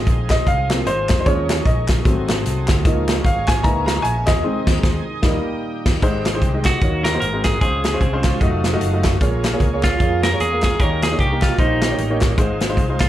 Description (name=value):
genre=uptempo gospel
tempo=151 BPM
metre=4/4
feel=swing 58% on 8ths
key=Ab major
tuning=A4 = 443 Hz
part: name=bright tonewheel organ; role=sustained chords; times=0.0-13.1 s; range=Bb2 to A4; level=-32 LUFS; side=right 3 dB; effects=slow rotary speaker, overdrive, chorus vibrato, plate reverb
part: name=warm studio string section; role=sustained chords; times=0.0-13.1 s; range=Eb5 to Eb6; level=-36 LUFS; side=right 3 dB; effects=none
part: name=fingered electric bass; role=bass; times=0.1-13.1 s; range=F1 to F2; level=-23 LUFS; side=equal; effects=none
part: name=natural country drum kit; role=drums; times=0.1-13.1 s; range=crash cymbal, hi-hat, kick drum, snare drum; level=-19 LUFS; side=equal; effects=none
part: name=warm upright piano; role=accompaniment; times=0.3-13.1 s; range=Ab2 to Bb5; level=-22 LUFS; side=left 1 dB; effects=plate reverb, slapback echo
part: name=group handclap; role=percussion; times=0.3-13.1 s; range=none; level=-32 LUFS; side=left 2 dB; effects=none
part: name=clean electric guitar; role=melody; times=6.7-13.1 s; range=Eb4 to Bb4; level=-21 LUFS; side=right 2 dB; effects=plate reverb, slapback echo
part: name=clean electric guitar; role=second line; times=8.0-9.0 s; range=Gb3 to Ab4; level=-26 LUFS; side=right 5 dB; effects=plate reverb, slapback echo
room=light reverb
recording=live gig heard through the venue's PA, club reverb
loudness=-16 LUFS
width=side -13 dB against mid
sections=0.0-6.0 A section; 6.0-13.1 B section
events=upright piano solo 0.0-6.0; band accent 4.4-6.0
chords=0.0 Ab6; 1.3 Eb7sus4; 2.1 Ab7b9; 2.9 Db6; 3.6 Dbm6; 4.4 Ab/Eb; 5.2 Eb; 6.0 Abmaj7; 6.8 Ebm7; 7.2 Ab9; 7.6 Dbmaj7; 8.4 F7b9; 9.2 Bbm7; 10.8 Eb7; 12.4 Ab6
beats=0.08 0.47 0.87 | 1.27 1.67 2.06 2.46 | 2.86 3.25 3.65 4.05 | 4.44 4.84 5.24 5.63 | 6.03 6.43 6.82 7.22 | 7.62 8.01 8.41 8.81 | 9.21 9.60 10.00 10.40 | 10.79 11.19 11.59 11.99 | 12.38 12.78